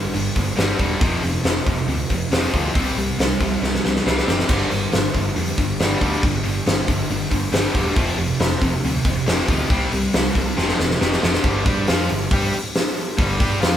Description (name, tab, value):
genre	hard rock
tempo	138 BPM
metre	4/4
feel	straight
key	unclear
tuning	A4 = 440 Hz
part	high-gain distorted guitar	riff	0.0-13.8 s	F2 to G4	-22 LUFS	equal	distortion
part	picked electric bass	bass	0.0-13.8 s	E1 to G2	-26 LUFS	equal	none
part	big rock drum kit	drums	0.1-13.7 s	crash cymbal, hi-hat, kick drum, snare drum	-20 LUFS	equal	none
room	moderate stone room reverb, RT60 1.2 s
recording	band playing live in one room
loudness	-17 LUFS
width	side -10 dB against mid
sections	0.0-11.4 A section; 11.4-13.8 B section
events	drum fill 3.6-4.5, 10.6-11.4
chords	0.0 G5; 1.0 F5; 2.8 C5; 4.5 G5; 8.0 F5; 9.7 C5; 10.6 F5; 11.4 G5